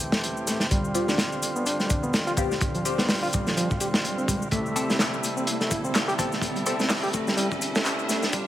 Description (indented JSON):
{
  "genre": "breakbeat, breaks",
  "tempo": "126 BPM",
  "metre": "4/4",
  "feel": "swing 57% on 16ths",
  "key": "A minor",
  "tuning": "A4 = 440 Hz",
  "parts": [
    { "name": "overdriven tonewheel organ", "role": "sustained chords", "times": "0.0-8.5 s", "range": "C3 to G4", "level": "-31 LUFS", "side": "right 1 dB", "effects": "vintage 12-bit sampler grit, sidechain pumping" },
    { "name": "dark detuned saw bass", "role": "bass", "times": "0.0-8.4 s", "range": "D1 to G2", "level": "-40 LUFS", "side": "equal", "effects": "none" },
    { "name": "electronic shaker and handclaps", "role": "drums", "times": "0.0-8.4 s", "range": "none", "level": "-33 LUFS", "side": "left 1 dB", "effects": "overdrive" },
    { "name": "riser", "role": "sound effects", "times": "2.0-8.5 s", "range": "none", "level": "-36 LUFS", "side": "equal", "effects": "none" },
    { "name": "crunchy breakbeat drum kit", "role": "drums", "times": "0.1-8.5 s", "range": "hi-hat, kick drum, snare drum", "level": "-26 LUFS", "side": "equal", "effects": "none" },
    { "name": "barky reed electric piano", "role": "riff", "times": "0.5-8.5 s", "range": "F3 to G4", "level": "-30 LUFS", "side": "equal", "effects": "vintage 12-bit sampler grit, low-pass filter, tape echo" },
    { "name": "band-passed chord stab", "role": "stabs", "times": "0.9-6.8 s", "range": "C4 to A4", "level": "-32 LUFS", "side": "left 2 dB", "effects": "phaser, tape echo" }
  ],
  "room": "moderate lush hall reverb, RT60 2.0 s",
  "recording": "high-pass filter",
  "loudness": "-23 LUFS",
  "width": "side -13 dB against mid",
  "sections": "0.0-8.5 A section",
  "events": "build-up 0.0-8.5; filter sweep on reed electric piano 0.0-8.5; filter sweep on synth stab 0.0-8.5; riser 2.0-8.5",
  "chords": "0.0 Am7; 0.7 G7sus4; 4.5 Am7",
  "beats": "0.23 | 0.71 1.19 1.66 2.14 | 2.61 3.09 3.57 4.04 | 4.52 5.00 5.47 5.95 | 6.42 6.90 7.38 7.85 | 8.33"
}